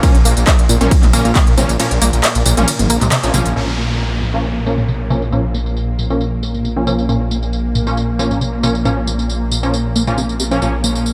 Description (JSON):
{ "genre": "driving peak-time techno", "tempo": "136 BPM", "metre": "4/4", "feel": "straight", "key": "Bb minor", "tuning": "A4 = 440 Hz", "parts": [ { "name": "tight sequenced synth", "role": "riff", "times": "0.0-10.9 s", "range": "Bb2 to Bb3", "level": "-24 LUFS", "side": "equal", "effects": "chorus, phaser, sidechain pumping, dub echo" }, { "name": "rave stab", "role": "stabs", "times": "0.0-10.7 s", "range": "F3 to Db4", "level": "-24 LUFS", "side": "equal", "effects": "chorus, built-in reverb, sidechain pumping, tape echo" }, { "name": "swarming drone", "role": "drone", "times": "0.0-11.1 s", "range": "Bb2 to Bb3", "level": "-26 LUFS", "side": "equal", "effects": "built-in reverb, sidechain pumping" }, { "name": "electronic kick drum", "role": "drums", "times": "0.0-1.4 s", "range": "none", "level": "-14 LUFS", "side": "equal", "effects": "overdrive, studio ambience" }, { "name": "techno drum kit", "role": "drums", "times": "0.0-11.1 s", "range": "crash cymbal, handclaps, hi-hat, ride cymbal, tambourine, toms", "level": "-22 LUFS", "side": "equal", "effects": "overdrive, low-pass filter on snare, studio ambience, sidechain pumping on hats, low-pass filter on hats, sidechain pumping on perc, low-pass filter on perc, sidechain pumping on cymbals, low-pass filter on cymbals, sidechain pumping on toms, low-pass filter on toms" }, { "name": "detuned saw bass", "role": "bass", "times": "0.1-11.1 s", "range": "Ab1 to Bb2", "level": "-21 LUFS", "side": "equal", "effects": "sidechain pumping" }, { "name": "downlifter", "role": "sound effects", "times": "3.6-7.1 s", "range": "none", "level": "-30 LUFS", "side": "equal", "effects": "none" } ], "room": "light reverb", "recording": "none", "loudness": "-16 LUFS", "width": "mono", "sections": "0.0-3.6 A section; 3.6-11.1 B section", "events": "drop 0.0-3.6; break 1.8-3.6; band accent 3.1; filter sweep on synth arpeggio sound 3.6-11.1", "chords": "0.0 Bbm" }